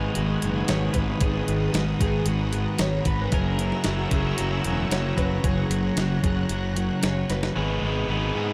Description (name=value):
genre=rock, shoegaze and dream pop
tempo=113 BPM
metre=4/4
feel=straight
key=G# minor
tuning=A4 = 440 Hz
part: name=string machine, full ensemble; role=sustained chords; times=0.0-8.5 s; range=B4 to F#6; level=-37 LUFS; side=equal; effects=ensemble chorus
part: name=fingerpicked twelve-string acoustic guitar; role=arpeggios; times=0.0-8.5 s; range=F#4 to C#5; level=-36 LUFS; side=equal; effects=subtle chorus, digital delay
part: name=biting overdriven guitar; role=riff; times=0.0-8.5 s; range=G#2 to B4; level=-32 LUFS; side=equal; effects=reverse reverb
part: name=thick fuzz guitar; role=riff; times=0.0-8.5 s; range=F#2 to G#3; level=-31 LUFS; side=equal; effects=distortion, ensemble chorus
part: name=fuzz fingered electric bass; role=bass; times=0.0-8.5 s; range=E1 to G#2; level=-30 LUFS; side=equal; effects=overdrive
part: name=clean 12-bit digital drum machine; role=drums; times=0.2-7.5 s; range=hi-hat, kick drum, snare drum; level=-29 LUFS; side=equal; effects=none
room=light reverb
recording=none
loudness=-24 LUFS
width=mono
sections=0.0-7.6 A section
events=drum fill 7.3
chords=0.0 G#m7; 3.3 F#7; 7.6 G#m7